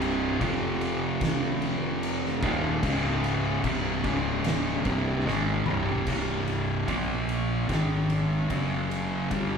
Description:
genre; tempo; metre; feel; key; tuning
stoner and doom metal; 74 BPM; 4/4; straight; C minor, C phrygian from 6.1 s; A4 = 439 Hz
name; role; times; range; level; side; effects
fuzz guitar; riff; 0.0-9.6 s; C2 to Bb3; -26 LUFS; equal; distortion
fuzz fingered electric bass; bass; 0.0-9.6 s; C1 to Bb1; -35 LUFS; equal; overdrive
oversized low-tuned drum kit; drums; 0.0-9.5 s; crash cymbal, kick drum, ride cymbal, snare drum, toms; -32 LUFS; equal; none
room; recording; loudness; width
light reverb; band playing live in one room; -25 LUFS; side -6 dB against mid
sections
0.0-6.1 A section; 6.1-9.6 B section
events
drum fill 5.3-6.1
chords
0.4 F5; 2.4 Eb5; 2.8 Db5; 3.6 C5; 4.1 Db5; 4.9 Cm; 6.1 C5; 6.9 Bb5; 7.7 Ab5; 8.5 F#5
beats
0.42 1.23 2.04 | 2.84 3.65 4.46 5.27 | 6.08 6.89 7.70 8.51 | 9.32

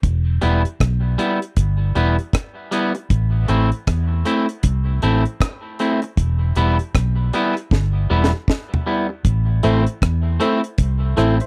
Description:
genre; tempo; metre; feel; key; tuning
dub reggae; 78 BPM; 4/4; swing 60% on 16ths; unclear; A4 = 440 Hz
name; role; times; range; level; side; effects
vintage muted fingered electric bass; bass; 0.0-11.4 s; E1 to E2; -20 LUFS; equal; none
deep reggae drum kit; drums; 0.0-11.5 s; hi-hat, kick drum, rim click, snare drum, toms; -21 LUFS; equal; none
electric guitar at the edge of break-up; accompaniment; 0.4-11.4 s; G3 to E4; -24 LUFS; equal; high-pass filter, dub echo
percussive organ stab; stabs; 9.6-11.5 s; E4 to E5; -26 LUFS; equal; chorus, dub echo
room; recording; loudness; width
little or no reverb; dry, close 1970s-style studio recording; -19 LUFS; mono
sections
0.0-9.2 A section; 9.2-11.5 B section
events
drum fill 7.7-9.2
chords
0.0 Em; 3.1 Am; 6.2 Em; 9.2 Am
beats
| 0.03 0.80 1.57 2.33 | 3.10 3.87 4.64 5.41 | 6.18 6.95 7.71 8.48 | 9.25 10.02 10.79

